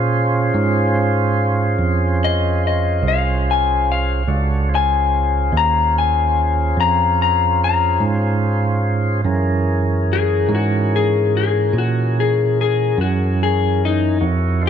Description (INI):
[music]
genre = slow blues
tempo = 48 BPM (dotted quarters)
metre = 12/8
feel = straight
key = unclear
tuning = A4 = 440 Hz
[part]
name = tonewheel organ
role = sustained chords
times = 0.0-14.7 s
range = Fb3 to Db5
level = -22 LUFS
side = right 2 dB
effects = slow rotary speaker
[part]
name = bell-like tine electric piano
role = bass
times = 0.0-14.7 s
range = C2 to Bb2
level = -18 LUFS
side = right 2 dB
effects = medium stereo tremolo
[part]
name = electric guitar through a small old amp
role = melody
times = 2.2-14.7 s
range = Eb4 to Bb5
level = -19 LUFS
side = left 10 dB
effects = none
[sound]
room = light reverb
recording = none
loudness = -15 LUFS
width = side -8 dB against mid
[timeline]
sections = 0.0-9.2 A section; 9.2-14.7 B section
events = clean electric guitar solo 9.2-14.7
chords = 0.0 Bbm7 (rootless); 9.2 Gb7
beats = 0.54 1.78 3.03 | 4.28 5.52 6.76 8.01 | 9.25 10.49 11.74 12.98 | 14.22